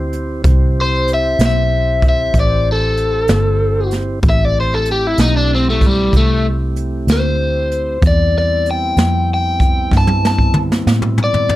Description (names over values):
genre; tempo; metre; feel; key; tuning
slow blues; 63 BPM (dotted quarters); 12/8; straight; A minor; A4 = 438 Hz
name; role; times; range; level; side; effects
mellow tonewheel organ; sustained chords; 0.0-11.6 s; G3 to C5; -24 LUFS; right 2 dB; slow rotary speaker
vintage muted fingered electric bass; bass; 0.0-11.6 s; G1 to A2; -17 LUFS; equal; none
jazz brush drum kit; drums; 0.1-11.6 s; hi-hat, kick drum, snare drum, toms; -16 LUFS; equal; none
crunchy overdriven guitar; melody; 0.8-11.6 s; G3 to A5; -17 LUFS; left 2 dB; none
room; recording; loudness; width
light reverb; none; -12 LUFS; side -16 dB against mid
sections
0.0-11.6 A section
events
overdriven electric guitar solo 0.0-11.6; drum fill 9.9-11.6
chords
0.0 Am9